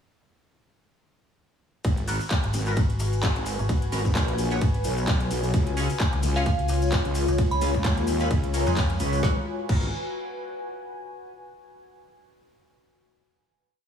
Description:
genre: bass house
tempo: 130 BPM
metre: 4/4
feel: swing 56% on 16ths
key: G# dorian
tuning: A4 = 440 Hz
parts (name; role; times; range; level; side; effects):
- wobble bass; bass; 1.8-9.9 s; G#1 to D#2; -26 LUFS; equal; chorus, overdrive, sidechain pumping
- electronic kick drum; drums; 1.8-9.8 s; none; -24 LUFS; equal; studio reverb
- garage drum kit; drums; 1.8-9.8 s; crash cymbal, handclaps, hi-hat, ride cymbal, snare drum; -33 LUFS; equal; studio reverb
- maracas; percussion; 1.8-9.2 s; none; -40 LUFS; left 4 dB; none
- warbly tape-like pad; texture; 2.2-11.0 s; E#4 to G#5; -32 LUFS; left 1 dB; chorus, built-in reverb, phaser, sidechain pumping
- band-passed chord stab; stabs; 2.1-9.9 s; B3 to C#5; -35 LUFS; right 1 dB; phaser, wide subtle chorus, sidechain pumping, digital delay
- metallic FM bass; bass; 2.4-9.0 s; G#1 to E#2; -27 LUFS; equal; overdrive, sidechain pumping
- dark analog pad; sustained chords; 6.7-9.4 s; G#3 to C#5; -34 LUFS; left 2 dB; chorus, sidechain pumping
- glassy synth bell; melody; 6.4-8.0 s; E#5 to B5; -32 LUFS; right 3 dB; chorus, digital delay
room: light reverb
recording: studio reverb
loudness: -22 LUFS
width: side -8 dB against mid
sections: 1.8-9.2 drop; 9.2-11.1 final chord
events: drop 1.8-9.2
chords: 1.8 G#m7; 5.5 C#; 9.2 G#m7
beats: | 1.84 2.31 2.77 3.23 | 3.69 4.15 4.62 5.08 | 5.54 6.00 6.46 6.92 | 7.38 7.84 8.31 8.77 | 9.23 9.69 10.15 10.62

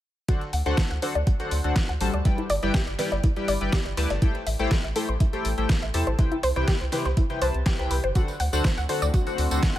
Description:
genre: progressive house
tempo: 122 BPM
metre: 4/4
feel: straight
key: unclear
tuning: A4 = 440 Hz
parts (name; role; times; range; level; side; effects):
- analog pluck; arpeggios; 0.3-9.8 s; E4 to F#5; -30 LUFS; equal; chorus, sidechain pumping, tape echo
- chorused polysynth; stabs; 0.3-9.6 s; C3 to A5; -28 LUFS; left 2 dB; sidechain pumping, tape echo
- dusty soul sampler-style drum kit; drums; 0.3-9.8 s; hi-hat, snare drum; -42 LUFS; left 1 dB; none
- electronic kick drum; drums; 0.3-9.7 s; none; -22 LUFS; equal; overdrive
- pop drum kit; drums; 0.3-9.8 s; hi-hat, snare drum, tambourine; -32 LUFS; equal; overdrive, sidechain pumping on hats, sidechain pumping on perc
- round analog bass; bass; 0.5-9.8 s; G1 to E2; -26 LUFS; equal; sidechain pumping
- shimmering ambient pad; sustained chords; 8.8-9.8 s; D3 to F#4; -33 LUFS; left 1 dB; chorus, built-in reverb, sidechain pumping
room: little or no reverb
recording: none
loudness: -22 LUFS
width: side -13 dB against mid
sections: 0.3-9.8 A section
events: none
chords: 0.3 D7; 2.3 G6; 4.2 Am7; 6.2 Cmaj7; 8.2 D7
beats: | 0.28 0.78 1.27 1.76 | 2.25 2.74 3.24 3.73 | 4.22 4.71 5.20 5.70 | 6.19 6.68 7.17 7.66 | 8.15 8.65 9.14 9.63

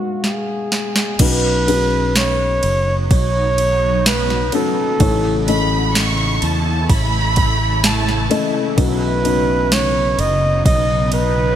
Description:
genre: pop ballad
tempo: 64 BPM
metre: 4/4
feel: straight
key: unclear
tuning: A4 = 435 Hz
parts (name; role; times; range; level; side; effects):
- breathy flugelhorn; melody; 0.0-11.6 s; F#4 to D#5; -19 LUFS; right 1 dB; none
- felt-muted upright piano; accompaniment; 0.0-11.6 s; B1 to E#5; -22 LUFS; left 5 dB; wide subtle chorus
- smooth R&B drum kit; drums; 0.2-11.3 s; crash cymbal, kick drum, ride cymbal, snare drum; -20 LUFS; right 1 dB; overdrive, gated reverb
- granular cloud pad; sustained chords; 2.7-11.6 s; C#3 to E4; -25 LUFS; right 1 dB; built-in reverb, ensemble chorus
- fretless electric bass; bass; 1.2-11.6 s; F#1 to E2; -19 LUFS; right 1 dB; analog chorus
- warm studio violin section; second line; 5.5-8.5 s; A5 to C#6; -22 LUFS; right 2 dB; none
room: light reverb, small room reverb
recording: bright 1980s-style digital production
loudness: -14 LUFS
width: side -10 dB against mid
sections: 0.0-1.2 A section; 1.2-11.6 B section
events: drum fill 0.2-1.2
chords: 0.0 B6; 1.2 Badd9; 5.0 A; 8.8 Badd9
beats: 0.23 | 1.20 2.16 3.11 4.06 | 5.00 5.95 6.89 7.84 | 8.78 9.71 10.65

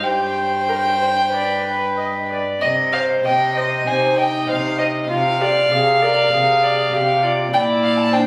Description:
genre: quick classical-period movement for string quartet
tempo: 96 BPM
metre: 4/4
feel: uneven beats, rubato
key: C minor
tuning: A4 = 439 Hz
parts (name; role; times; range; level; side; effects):
- rich violin; melody; 0.0-8.3 s; Eb5 to A5; -23 LUFS; equal; none
- dark violin; second line; 0.0-8.3 s; B4 to F5; -22 LUFS; equal; none
- warm viola; accompaniment; 0.0-8.3 s; D4 to Eb5; -27 LUFS; equal; none
- rich cello; bass; 0.0-8.3 s; G2 to C3; -27 LUFS; equal; none
room: moderate recital hall reverb, RT60 1.6 s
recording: recorded on a phone in the room, studio reverb, compression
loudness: -18 LUFS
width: mono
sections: 0.0-8.3 A section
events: none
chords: 0.0 C5/G; 1.3 G; 2.6 Cm; 5.1 Ddim/C; 7.5 Bb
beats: | 0.04 0.69 1.33 1.97 | 2.62 3.25 3.87 4.49 | 5.10 5.71 6.33 6.93 | 7.54 8.14

